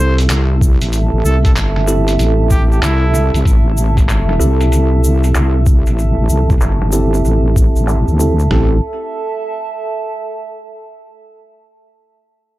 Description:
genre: glitch hop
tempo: 95 BPM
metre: 4/4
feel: swing 64% on 16ths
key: A minor pentatonic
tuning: A4 = 441 Hz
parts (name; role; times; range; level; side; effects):
- warm trumpet; melody; 0.0-3.3 s; E4 to C5; -24 LUFS; equal; digital delay
- bell-like tine electric piano; stabs; 0.0-8.8 s; C4 to A4; -20 LUFS; right 1 dB; sidechain pumping, low-pass filter, digital delay
- wobble bass; bass; 0.0-8.8 s; G1 to D2; -13 LUFS; equal; chorus, tube saturation
- warbly tape-like pad; texture; 0.0-11.0 s; A4 to A5; -23 LUFS; right 4 dB; chorus, built-in reverb, sidechain pumping
- boom bap sampler-style drum kit; drums; 0.2-8.4 s; handclaps, hi-hat, snare drum; -23 LUFS; equal; low-pass filter on hats, low-pass filter on snare, low-pass filter on toms, low-pass filter on room
- tube shaker; percussion; 0.2-8.5 s; none; -27 LUFS; left 3 dB; none
- boom bap sampler-style drum kit; drums; 0.6-8.7 s; kick drum, snare drum, toms; -13 LUFS; equal; none
room: light reverb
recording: dark, warm production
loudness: -11 LUFS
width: side -17 dB against mid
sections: 0.0-8.5 A section; 8.5-11.0 B section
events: filter sweep on drum 0.0-8.5; filter sweep on wobble bass 0.0-8.5; filter sweep on tine electric piano 0.0-8.5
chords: 0.0 Am7; 8.5 A5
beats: 0.30 | 0.93 1.56 2.19 2.82 | 3.46 4.09 4.72 5.35 | 5.98 6.61 7.25 7.88 | 8.51 9.14 9.77 10.40

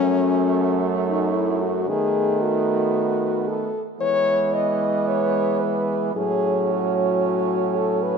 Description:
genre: classical, lyrical piece for horn quartet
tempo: 56 BPM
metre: 4/4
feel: rubato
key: unclear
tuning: A4 = 438 Hz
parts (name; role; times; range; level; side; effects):
- mellow French horn; melody; 0.0-8.2 s; C#4 to D#5; -23 LUFS; left 6 dB; none
- clear French horn; second line; 0.0-8.2 s; A3 to C#4; -26 LUFS; right 12 dB; none
- dark French horn; accompaniment; 0.0-8.2 s; F#3 to A3; -26 LUFS; right 1 dB; none
- warm French horn; bass; 0.0-8.2 s; F#2 to E3; -27 LUFS; right 4 dB; none
room: moderate concert hall reverb, RT60 2.4 s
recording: none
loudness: -19 LUFS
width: side -6 dB against mid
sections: 0.0-8.2 A section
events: none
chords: 0.0 F#m; 1.9 B7/D#; 4.0 E; 6.1 F#m/A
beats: 0.80 | 1.88 2.94 4.00 5.07 | 6.15 7.22

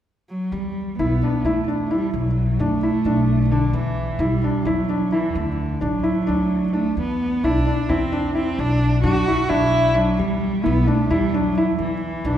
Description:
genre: contemporary instrumental, chamber music in an uneven meter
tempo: 261 BPM (eighths)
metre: 7/8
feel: straight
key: E minor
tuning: A4 = 440 Hz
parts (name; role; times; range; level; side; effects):
- dark cello; melody; 0.3-12.4 s; D3 to F#4; -22 LUFS; right 1 dB; none
- upright bass; bass; 0.5-12.4 s; A1 to F#2; -23 LUFS; left 1 dB; none
- felt-muted upright piano; arpeggios; 1.0-12.4 s; D4 to E4; -23 LUFS; equal; none
room: wet concert hall reverb, RT60 2.4 s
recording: recorded in a church or concert hall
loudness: -18 LUFS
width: side -10 dB against mid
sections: 0.5-12.4 A section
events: none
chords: 0.0 N.C.; 0.5 Em7; 2.1 Bm7; 3.7 Em7; 5.3 D; 7.0 E5; 8.6 Bm; 10.2 E5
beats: 0.06 0.29 | 0.53 0.76 0.99 1.22 1.45 1.68 1.91 | 2.14 2.37 2.59 2.82 3.05 3.28 3.51 | 3.74 3.97 4.20 4.42 4.66 4.88 5.11 | 5.34 5.57 5.80 6.03 6.27 6.50 6.74 | 6.97 7.20 7.43 7.66 7.89 8.12 8.35 | 8.58 8.81 9.04 9.26 9.49 9.72 9.95 | 10.18 10.41 10.64 10.87 11.10 11.33 11.56 | 11.79 12.02 12.25

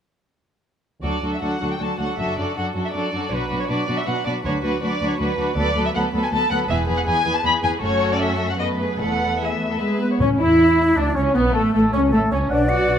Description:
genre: quick classical-period movement for symphony orchestra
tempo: 158 BPM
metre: 3/4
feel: rubato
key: D major, A major from 5.6 s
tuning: A4 = 440 Hz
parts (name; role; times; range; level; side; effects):
- muted chamber violin section; melody; 1.0-13.0 s; A3 to B5; -25 LUFS; left 2 dB; none
- muted chamber violin section; second line; 1.0-13.0 s; A3 to D5; -26 LUFS; left 1 dB; none
- muted chamber viola section; accompaniment; 1.0-13.0 s; E3 to F#4; -27 LUFS; right 1 dB; none
- muted chamber cello section; bass; 1.0-13.0 s; D2 to F#4; -24 LUFS; equal; none
- muted chamber double bass section; bass; 1.0-13.0 s; E1 to E2; -26 LUFS; right 2 dB; none
- bright silver concert flute; second line; 9.8-13.0 s; G#4 to F#5; -28 LUFS; left 2 dB; none
- mellow clarinet; second line; 10.2-13.0 s; A3 to D5; -24 LUFS; right 2 dB; none
- warm oboe; second line; 10.2-13.0 s; B3 to F#5; -25 LUFS; equal; none
- mellow French horn section; sustained chords; 10.2-13.0 s; A3 to D5; -24 LUFS; left 2 dB; none
- timpani; percussion; 10.2-10.7 s; A2; -25 LUFS; left 1 dB; none
room: light reverb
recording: close, detailed microphones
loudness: -18 LUFS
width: side -9 dB against mid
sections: 1.0-10.2 A section; 10.2-13.0 B section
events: none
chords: 1.0 D; 2.2 D/F#; 3.3 Bm; 4.5 Bm/D; 5.6 Bm7/D; 6.7 E; 7.8 F#m; 8.6 B7(no3)/F#; 9.0 Esus4; 9.8 E/G#; 10.2 C#m; 11.4 A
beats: | 1.04 1.42 1.80 | 2.19 2.57 2.95 | 3.33 3.70 4.08 | 4.45 4.83 5.20 | 5.57 5.95 6.32 | 6.69 7.06 7.44 | 7.82 8.20 8.60 | 9.00 9.41 9.81 | 10.21 10.60 10.98 | 11.37 11.75 12.13 | 12.51 12.89

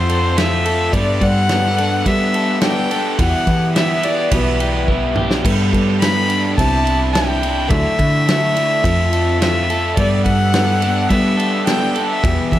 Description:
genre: folk rock and heartland rock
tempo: 106 BPM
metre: 4/4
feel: straight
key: G major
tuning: A4 = 439 Hz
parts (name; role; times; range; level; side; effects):
- rich fiddle; melody; 0.0-12.6 s; B4 to B5; -20 LUFS; left 2 dB; dub echo
- picked steel-string acoustic guitar; accompaniment; 0.0-12.6 s; E2 to A4; -23 LUFS; left 2 dB; none
- accordion; sustained chords; 0.0-12.6 s; A3 to C5; -31 LUFS; right 3 dB; none
- crunchy overdriven guitar; riff; 0.0-12.6 s; E2 to A4; -22 LUFS; right 1 dB; dub echo
- hollow-body short-scale picked electric bass; bass; 0.0-12.6 s; B1 to G3; -19 LUFS; equal; none
- natural country drum kit; drums; 0.1-12.6 s; crash cymbal, kick drum, ride cymbal, snare drum, toms; -21 LUFS; equal; dub echo
room: small room ambience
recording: echo-heavy mix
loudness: -14 LUFS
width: side -13 dB against mid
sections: 0.0-12.6 A section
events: drum fill 4.9-5.5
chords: 0.0 F; 0.9 Gadd9; 3.2 Em; 5.5 Gadd9; 6.6 Cadd9; 7.7 Dadd9; 8.8 F; 10.0 Gadd9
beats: 0.37 | 0.93 1.50 2.06 2.63 | 3.19 3.75 4.32 4.88 | 5.45 6.01 6.58 7.15 | 7.71 8.28 8.84 9.41 | 9.97 10.54 11.11 11.67 | 12.23

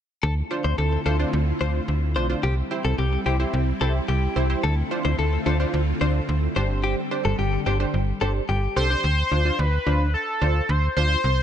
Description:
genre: synth-pop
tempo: 109 BPM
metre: 4/4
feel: straight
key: D minor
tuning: A4 = 440 Hz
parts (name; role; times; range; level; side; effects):
- direct-recorded clean electric guitar; second line; 0.2-8.9 s; G4 to C5; -29 LUFS; left 5 dB; analog chorus, ping-pong delay
- string machine, violas; sustained chords; 0.2-9.0 s; D3 to F4; -30 LUFS; equal; ensemble chorus
- slap-like FM bass; bass; 0.2-11.4 s; G1 to D2; -22 LUFS; equal; none
- funky polysynth comp; accompaniment; 0.5-11.2 s; D4 to C5; -29 LUFS; right 1 dB; chorus
- octave-doubled lead; melody; 8.8-11.4 s; A4 to C5; -23 LUFS; equal; chorus
room: light reverb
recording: nothing above 10.5 kHz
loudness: -20 LUFS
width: side -9 dB against mid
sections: 0.2-9.0 A section; 9.0-11.4 B section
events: none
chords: 0.2 Dm7; 2.4 C; 4.6 Dm7; 6.6 Gsus4; 9.0 Dm7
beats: | 0.23 0.78 1.33 1.88 | 2.43 2.98 3.53 4.08 | 4.63 5.18 5.74 6.29 | 6.84 7.39 7.94 8.49 | 9.04 9.59 10.14 10.69 | 11.24

